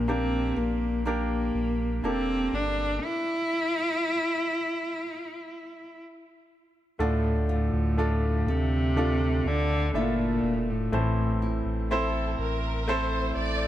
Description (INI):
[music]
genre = pop ballad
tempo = 61 BPM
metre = 4/4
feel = straight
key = D minor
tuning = A4 = 441 Hz
[part]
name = warm cello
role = melody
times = 0.0-11.7 s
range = A2 to E4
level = -28 LUFS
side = equal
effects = none
[part]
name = clear baby grand piano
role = accompaniment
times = 0.0-13.7 s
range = A2 to E5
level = -31 LUFS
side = equal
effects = none
[part]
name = nylon-string guitar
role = arpeggios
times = 0.0-13.7 s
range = A2 to Bb4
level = -36 LUFS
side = left 2 dB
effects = tape echo
[part]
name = saturated sub bass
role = bass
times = 0.0-13.7 s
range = E1 to D2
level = -29 LUFS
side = equal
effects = none
[part]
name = warm studio violin section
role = second line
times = 11.9-13.7 s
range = A4 to D5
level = -33 LUFS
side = left 1 dB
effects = none
[sound]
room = light reverb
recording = none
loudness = -24 LUFS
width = side -12 dB against mid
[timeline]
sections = 0.0-7.0 A section; 7.0-13.7 A section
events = stop 3.0-7.0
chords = 0.0 Gm/Bb; 3.0 N.C.; 7.0 Dm; 10.9 Am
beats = 0.08 1.06 2.04 | 3.02 4.01 5.00 6.00 | 7.00 7.99 8.97 9.95 | 10.93 11.91 12.88